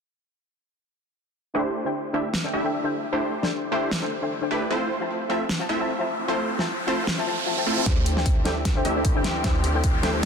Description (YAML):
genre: future bass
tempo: 152 BPM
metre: 4/4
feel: swing 55% on 16ths, half-time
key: unclear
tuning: A4 = 442 Hz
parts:
  - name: soft round pluck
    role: accompaniment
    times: 1.5-10.2 s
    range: D4 to A5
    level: -28 LUFS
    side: left 2 dB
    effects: lush chorus, sidechain pumping, ping-pong delay
  - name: supersaw stab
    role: riff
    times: 1.5-10.3 s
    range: A3 to E5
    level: -27 LUFS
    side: right 1 dB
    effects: sidechain pumping, low-pass filter, ping-pong delay
  - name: big-room dance drum kit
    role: drums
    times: 2.3-10.3 s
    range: hi-hat, snare drum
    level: -30 LUFS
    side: equal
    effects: soft clipping on snare
  - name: riser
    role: sound effects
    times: 5.9-10.3 s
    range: none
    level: -31 LUFS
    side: right 1 dB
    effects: none
  - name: muted studio string section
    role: sustained chords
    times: 7.9-10.3 s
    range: E3 to G4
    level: -33 LUFS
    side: left 1 dB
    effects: sidechain pumping
  - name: warm 808-style bass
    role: bass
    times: 7.9-10.3 s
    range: D2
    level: -27 LUFS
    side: equal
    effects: sidechain pumping
  - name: electronic kick drum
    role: drums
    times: 7.9-10.3 s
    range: none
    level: -23 LUFS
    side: equal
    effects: none
room: light reverb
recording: dense, heavily limited modern master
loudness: -22 LUFS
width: side -6 dB against mid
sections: 1.5-7.9 A section; 7.9-10.3 B section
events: filter sweep on supersaw synth 1.5-7.9; riser 5.9-7.9, 7.9-10.3; build-up 7.9-10.3; drum fill 7.9-10.3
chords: 1.5 D9sus4; 4.7 Fmaj7; 7.9 D9sus4